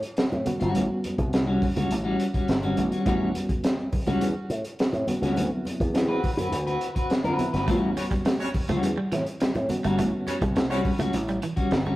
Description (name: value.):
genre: funk.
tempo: 104 BPM.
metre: 4/4.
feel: straight.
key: A mixolydian.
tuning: A4 = 439 Hz.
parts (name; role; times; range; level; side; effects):
crunchy breakbeat drum kit; drums; 0.0-11.9 s; hi-hat, kick drum, snare drum; -27 LUFS; equal; none.
congas; percussion; 0.2-12.0 s; none; -37 LUFS; right 2 dB; none.
slap bass with an envelope filter; bass; 0.3-12.0 s; G1 to D3; -28 LUFS; equal; none.
reed electric piano; stabs; 0.5-10.8 s; F#3 to F#4; -31 LUFS; equal; fast tremolo.
clean electric guitar; accompaniment; 0.6-12.0 s; G3 to B4; -27 LUFS; left 1 dB; tremolo.
clean electric guitar; riff; 7.7-11.9 s; E3 to A3; -33 LUFS; right 2 dB; none.
warm horn section; second line; 8.0-10.8 s; G3 to C#5; -33 LUFS; equal; none.
room: wet stone room reverb, RT60 1.3 s.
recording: rough rehearsal-room recording, warm saturation.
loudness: -23 LUFS.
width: side -17 dB against mid.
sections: 0.0-12.0 A section.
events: none.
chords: 0.0 A13; 5.4 D13; 7.7 A13.